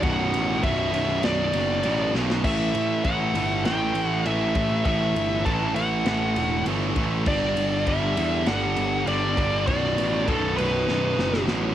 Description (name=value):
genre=heavy metal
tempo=100 BPM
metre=4/4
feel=straight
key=B minor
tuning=A4 = 440 Hz
part: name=high-gain lead guitar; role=melody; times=0.0-11.4 s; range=A4 to A5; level=-26 LUFS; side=left 1 dB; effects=distortion, cassette tape
part: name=heavy high-gain guitar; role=riff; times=0.0-11.7 s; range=B1 to A3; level=-31 LUFS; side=left 12 dB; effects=distortion
part: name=heavy high-gain guitar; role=riff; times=0.0-11.7 s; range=B1 to A3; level=-27 LUFS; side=right 8 dB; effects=distortion
part: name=fuzz picked electric bass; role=bass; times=0.0-11.7 s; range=B0 to E2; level=-27 LUFS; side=equal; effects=overdrive
part: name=modern studio drum kit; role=drums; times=0.0-11.6 s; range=crash cymbal, kick drum, ride cymbal, snare drum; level=-30 LUFS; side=equal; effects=cassette tape
room=little or no reverb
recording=home recording on cassette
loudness=-21 LUFS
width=side -11 dB against mid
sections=0.0-11.7 A section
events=half time 0.0-11.7; drum fill 2.1-2.4, 10.9-11.7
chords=0.0 Bm; 2.4 A5; 7.3 G5; 9.7 Bm